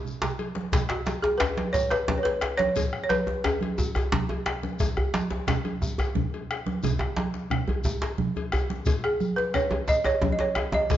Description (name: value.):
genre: west african traditional, West African drum ensemble.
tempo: 118 BPM (dotted quarters).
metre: 12/8.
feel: straight.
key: B major pentatonic.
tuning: A4 = 438 Hz.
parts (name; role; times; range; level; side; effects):
congas; percussion; 0.0-11.0 s; none; -31 LUFS; right 5 dB; none.
shekere; percussion; 0.1-11.0 s; none; -38 LUFS; left 3 dB; none.
bombo; percussion; 0.2-11.0 s; none; -31 LUFS; equal; none.
cowbell; percussion; 0.2-11.0 s; none; -37 LUFS; left 6 dB; none.
djembe; percussion; 0.2-11.0 s; none; -34 LUFS; left 5 dB; none.
djembe; percussion; 0.2-11.0 s; none; -30 LUFS; equal; none.
balafon; melody; 0.9-4.6, 9.0-11.0 s; F#4 to D#5; -25 LUFS; right 1 dB; none.
room: wet recital hall reverb, RT60 1.4 s.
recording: nothing above 7.6 kHz.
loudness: -24 LUFS.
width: side -12 dB against mid.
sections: 0.7-11.0 A section.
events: drum fill 0.0-0.7, 8.2-8.9.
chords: none.